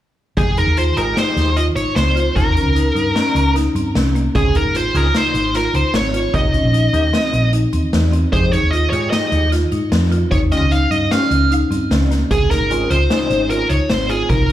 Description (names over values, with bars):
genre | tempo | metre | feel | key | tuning
progressive instrumental, band music in an uneven meter | 151 BPM | 5/4 | straight | Bb dorian | A4 = 440 Hz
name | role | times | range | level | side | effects
high-gain lead guitar | melody | 0.4-14.5 s | Ab4 to F5 | -20 LUFS | equal | distortion, slapback echo, digital delay
percussive tonewheel organ | accompaniment | 0.4-13.7 s | G3 to Ab4 | -27 LUFS | equal | overdrive, chorus vibrato, slow rotary speaker, slapback echo
marimba with hard mallets | arpeggios | 0.4-14.5 s | Bb3 to Ab4 | -21 LUFS | equal | slapback echo
hollow-body short-scale fingered electric bass | bass | 0.4-14.5 s | F1 to Ab2 | -18 LUFS | equal | none
street-band drum kit | drums | 0.4-14.5 s | hi-hat, kick drum, snare drum | -22 LUFS | equal | none
room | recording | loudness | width
small room ambience | live gig heard through the venue's PA, club reverb | -14 LUFS | side -12 dB against mid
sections
0.4-14.5 A section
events
none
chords
0.4 Fm7; 2.4 Eb7; 4.4 Bbm11/Ab; 6.3 Cm7; 8.3 Fm7; 10.3 Eb7; 12.3 Bbm11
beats
| 0.37 0.77 1.17 1.57 1.96 | 2.36 2.76 3.16 3.56 3.95 | 4.35 4.75 5.15 5.54 5.94 | 6.34 6.74 7.13 7.53 7.93 | 8.33 8.73 9.12 9.52 9.92 | 10.32 10.71 11.11 11.51 11.91 | 12.31 12.71 13.10 13.50 13.90 | 14.30